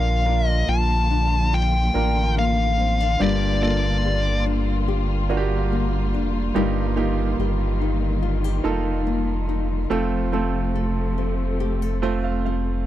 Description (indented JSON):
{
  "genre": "pop",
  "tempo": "71 BPM",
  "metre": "4/4",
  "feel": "straight",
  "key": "Bb major",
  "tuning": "A4 = 440 Hz",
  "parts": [
    { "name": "high-gain lead guitar", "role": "melody", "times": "0.0-4.4 s", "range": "D5 to A5", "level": "-24 LUFS", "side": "left 4 dB", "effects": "distortion" },
    { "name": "clear concert grand piano", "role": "accompaniment", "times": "0.0-12.9 s", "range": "G2 to A5", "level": "-27 LUFS", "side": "right 6 dB", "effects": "none" },
    { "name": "warm studio string section", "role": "sustained chords", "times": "0.0-12.9 s", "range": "C3 to F4", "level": "-29 LUFS", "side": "equal", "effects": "none" },
    { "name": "saturated sub bass", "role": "bass", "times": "0.0-12.9 s", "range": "F1 to Bb1", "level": "-23 LUFS", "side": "equal", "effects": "none" },
    { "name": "nylon-string guitar", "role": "arpeggios", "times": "0.3-12.9 s", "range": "F2 to A4", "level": "-29 LUFS", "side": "left 12 dB", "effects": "none" }
  ],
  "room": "little or no reverb",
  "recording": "dry, close 1970s-style studio recording",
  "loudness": "-20 LUFS",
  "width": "side -13 dB against mid",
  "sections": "0.0-12.9 A section",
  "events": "grand piano fill 11.6-12.9",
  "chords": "0.0 Bb; 3.2 Gm7; 6.6 Ebadd9/G; 9.9 F"
}